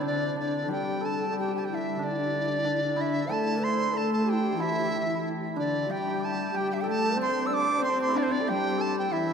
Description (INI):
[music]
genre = chinese traditional, Chinese chamber ensemble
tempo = 93 BPM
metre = 2/4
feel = rubato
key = D shang mode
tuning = A4 = 437 Hz
[part]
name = bright reedy large dizi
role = melody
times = 0.0-9.3 s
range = C5 to E6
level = -29 LUFS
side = right 1 dB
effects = none
[part]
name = breathy bright low xiao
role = second line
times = 0.0-9.3 s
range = D4 to D5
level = -32 LUFS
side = left 3 dB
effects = none
[part]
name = dark cello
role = second line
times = 0.0-9.3 s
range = D3 to D4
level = -32 LUFS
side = left 1 dB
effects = none
[part]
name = hammered dulcimer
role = second line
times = 0.0-9.3 s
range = C4 to C5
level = -33 LUFS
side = right 3 dB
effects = none
[sound]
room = wet cathedral reverb, RT60 5.8 s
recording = in a vast, echoing space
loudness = -25 LUFS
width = side -6 dB against mid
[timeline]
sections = 0.7-9.3 A section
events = none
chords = none